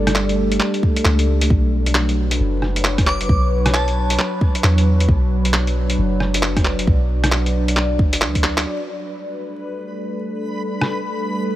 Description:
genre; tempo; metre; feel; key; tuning
future garage; 134 BPM; 4/4; swing 62% on 16ths; B minor; A4 = 441 Hz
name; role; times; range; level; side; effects
warbly tape-like pad; sustained chords; 0.0-11.6 s; F#3 to D5; -22 LUFS; equal; chorus, built-in reverb, phaser, sidechain pumping
soft 808-style bass; bass; 0.0-8.7 s; F#1 to E2; -19 LUFS; equal; none
lo-fi sampler-style drum kit; drums; 0.1-10.9 s; handclaps, hi-hat, rim click; -21 LUFS; equal; overdrive
electronic kick drum; drums; 0.8-8.4 s; none; -17 LUFS; equal; none
glassy synth bell; melody; 3.1-3.9 s; A5 to D6; -26 LUFS; right 2 dB; chorus, phaser, dub echo
backwards swelling texture; texture; 9.1-11.6 s; B4 to B5; -30 LUFS; left 2 dB; built-in reverb
room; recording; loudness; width
light reverb; vinyl crackle; -16 LUFS; side -14 dB against mid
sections
0.0-8.7 A section; 8.7-11.6 B section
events
drum fill 8.4; filter sweep on ambient pad 8.7-11.6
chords
0.0 Gsus2; 1.5 Bmadd9; 8.7 Gsus2

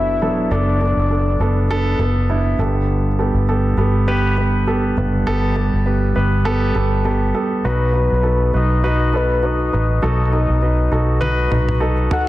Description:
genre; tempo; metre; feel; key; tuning
piano-driven pop; 101 BPM; 4/4; swing 56% on 16ths; unclear; A4 = 439 Hz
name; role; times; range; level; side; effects
soft octave-layered synth lead; melody; 0.0-2.3, 7.7-12.3 s; B4 to F#5; -22 LUFS; left 3 dB; chorus
dark grand piano; accompaniment; 0.0-12.3 s; G2 to B4; -19 LUFS; right 1 dB; none
vintage muted fingered electric bass; bass; 0.0-12.1 s; E1 to B1; -18 LUFS; equal; none
toms; drums; 11.2-12.3 s; none; -23 LUFS; equal; none
room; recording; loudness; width
light reverb, small room ambience; dense, heavily limited modern master; -15 LUFS; side -16 dB against mid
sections
0.0-12.3 A section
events
drum fill 11.2-12.3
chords
0.0 Bm7; 2.6 Gadd9; 7.6 B

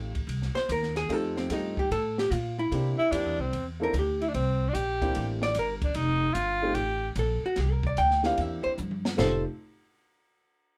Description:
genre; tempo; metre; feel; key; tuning
jazz, small-group swing and bop; 148 BPM; 4/4; swing 67% on 8ths; F major; A4 = 440 Hz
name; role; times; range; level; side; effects
warm upright piano; accompaniment; 0.0-9.4 s; A3 to A4; -35 LUFS; equal; none
upright bass; bass; 0.0-9.4 s; F1 to C3; -33 LUFS; equal; none
compact cocktail drum kit; drums; 0.1-9.3 s; crash cymbal, hi-hat, kick drum, ride cymbal, snare drum, toms; -39 LUFS; equal; none
hollow-body jazz guitar; melody; 0.6-9.4 s; C4 to G5; -31 LUFS; equal; none
breathy tenor saxophone; second line; 3.0-9.4 s; C4 to A4; -31 LUFS; equal; none
room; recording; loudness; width
moderate studio reverb, RT60 0.5 s; none; -28 LUFS; mono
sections
0.0-9.2 A section; 9.2-10.8 B section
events
drum fill 8.8-9.2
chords
0.0 F9; 2.7 C9; 6.0 F9; 7.6 C9; 9.2 F9

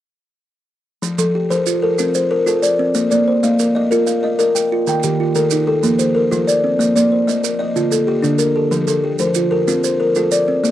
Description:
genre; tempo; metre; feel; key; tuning
southern african traditional, mbira-style interlocking cycle; 125 BPM (dotted quarters); 12/8; straight; F mixolydian; A4 = 439 Hz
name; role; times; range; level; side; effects
buzzing kalimba; arpeggios; 1.0-10.7 s; D3 to G5; -16 LUFS; left 2 dB; none
maracas; percussion; 1.0-10.7 s; none; -26 LUFS; right 16 dB; none
kalimba; arpeggios; 1.2-10.7 s; D3 to G5; -19 LUFS; right 4 dB; none
room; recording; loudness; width
little or no reverb; dry, close 1970s-style studio recording; -14 LUFS; side -12 dB against mid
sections
1.0-10.7 A section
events
none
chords
1.0 F; 3.0 Bb; 4.9 Eb; 5.8 F; 6.8 Bb; 7.8 Dm; 8.7 F

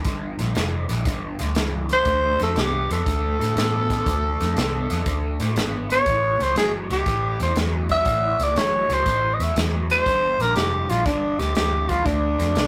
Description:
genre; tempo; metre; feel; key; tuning
electric blues shuffle; 120 BPM; 4/4; swing 68% on 8ths; unclear; A4 = 440 Hz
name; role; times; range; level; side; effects
crunchy overdriven guitar; riff; 0.0-12.7 s; G2 to B3; -32 LUFS; equal; phaser
natural country drum kit; drums; 0.0-12.7 s; hi-hat, kick drum, snare drum; -30 LUFS; equal; none
vintage muted fingered electric bass; bass; 0.1-12.7 s; F1 to A2; -28 LUFS; equal; none
growling tenor saxophone; melody; 1.9-12.7 s; D4 to E5; -24 LUFS; equal; none
room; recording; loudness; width
moderate studio reverb, RT60 0.6 s; rough rehearsal-room recording, tube saturation; -22 LUFS; mono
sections
0.0-12.7 A section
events
none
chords
0.0 Gm7; 2.1 Dm7; 6.1 A7; 10.1 Gm7; 12.1 Dm7

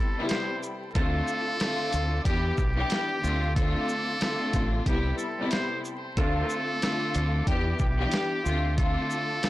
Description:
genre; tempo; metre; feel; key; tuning
hip hop, boom-bap hip-hop; 92 BPM; 4/4; swing 62% on 16ths; D dorian; A4 = 440 Hz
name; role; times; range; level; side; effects
trumpet with metal mute; melody; 0.0-9.5 s; G4 to C5; -32 LUFS; right 1 dB; high-pass filter, low-pass filter, digital delay
muted studio string section; sustained chords; 0.0-9.5 s; G4 to D6; -42 LUFS; right 1 dB; high-pass filter, low-pass filter
warm studio string section; accompaniment; 0.2-9.5 s; C3 to G4; -30 LUFS; left 2 dB; high-pass filter, low-pass filter
dusty soul sampler-style drum kit; drums; 0.3-9.5 s; hi-hat, kick drum, shaker, snare drum; -28 LUFS; equal; none
mellow saxophone section; stabs; 0.9-1.2, 6.2-6.6 s; D4 to A4; -38 LUFS; right 4 dB; high-pass filter, low-pass filter, digital delay
deep dub fingered electric bass; bass; 1.0-9.0 s; A1 to E2; -28 LUFS; equal; tube saturation
room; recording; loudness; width
studio reverb; blown-out, overdriven recording, vinyl crackle, overdrive; -25 LUFS; side -16 dB against mid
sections
0.0-9.5 A section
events
none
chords
0.0 Am9/C; 1.0 Dm7; 2.3 Em7; 3.2 Dm7; 4.9 Am9/C; 6.2 Dm7; 7.5 Em7; 8.5 Dm7

